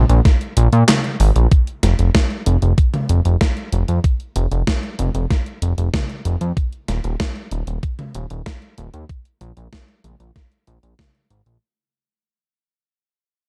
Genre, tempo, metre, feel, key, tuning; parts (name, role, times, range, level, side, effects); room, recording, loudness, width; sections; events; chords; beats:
synthwave; 95 BPM; 4/4; straight; A4 = 439 Hz
fat analog bass; bass; 0.0-11.6 s; Eb1 to Bb2; -18 LUFS; equal; tube saturation, sidechain pumping
gated 80s digital drum machine; drums; 0.1-11.6 s; handclaps, hi-hat, snare drum, toms; -24 LUFS; equal; gated reverb, gated reverb snare
electronic kick drum; drums; 0.3-11.1 s; -19 LUFS; equal
little or no reverb; dark, warm production; -18 LUFS; mono
0.0-1.5 A section; 1.5-11.6 B section
kick drops out 0.9-1.5; fade-out 1.5-11.6
0.25 0.88 | 1.51 2.15 2.78 3.41 | 4.04 4.67 5.30 5.94 | 6.57 7.20 7.83 8.46 | 9.09 9.73 10.36 10.99